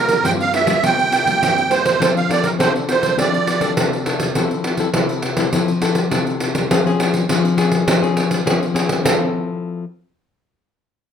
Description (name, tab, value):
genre	samba and choro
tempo	102 BPM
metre	4/4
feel	straight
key	F major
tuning	A4 = 440 Hz
part	musette accordion	melody	0.0-3.7 s	Bb4 to G5	-17 LUFS	right 5 dB	plate reverb
part	nylon-string guitar	accompaniment	0.0-9.8 s	G2 to A4	-20 LUFS	left 5 dB	none
part	pandeiro	percussion	0.1-9.2 s	none	-19 LUFS	right 1 dB	none
room	moderate studio ambience, RT60 0.5 s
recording	none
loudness	-15 LUFS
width	side -8 dB against mid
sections	0.0-4.4 A section; 4.4-9.0 B section; 9.0-11.1 C section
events	none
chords	0.0 C7sus4; 2.0 F6; 4.4 Fmaj7; 6.7 Dbmaj7/F; 9.0 Fmaj7